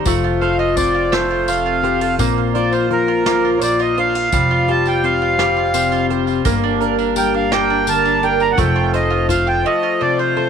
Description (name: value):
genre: acoustic folk duo or small band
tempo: 56 BPM (dotted quarters)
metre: 6/8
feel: straight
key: unclear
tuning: A4 = 440 Hz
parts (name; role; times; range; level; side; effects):
- fingerpicked plugged-in steel-string acoustic guitar; accompaniment; 0.0-10.5 s; G2 to C5; -19 LUFS; left 6 dB; none
- mandolin; arpeggios; 0.0-10.5 s; G3 to C5; -21 LUFS; right 12 dB; none
- upright bass; bass; 0.0-9.6 s; F1 to Bb1; -24 LUFS; right 1 dB; none
- soft brush drum kit; drums; 0.1-9.5 s; hi-hat, kick drum, snare drum; -24 LUFS; right 1 dB; none
- tambourine; percussion; 0.1-9.5 s; none; -30 LUFS; left 13 dB; none
- accordion; melody; 0.4-10.5 s; Bb4 to Bb5; -18 LUFS; right 1 dB; none
room: moderate echo chamber reverb, RT60 2.1 s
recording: 1960s-style stereo with parts hard left and right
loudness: -14 LUFS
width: side -7 dB against mid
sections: 0.0-10.5 A section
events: accordion solo 0.0-10.5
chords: 0.1 F; 2.2 Bbsus2; 4.3 Fsus2; 6.5 Gm; 8.6 F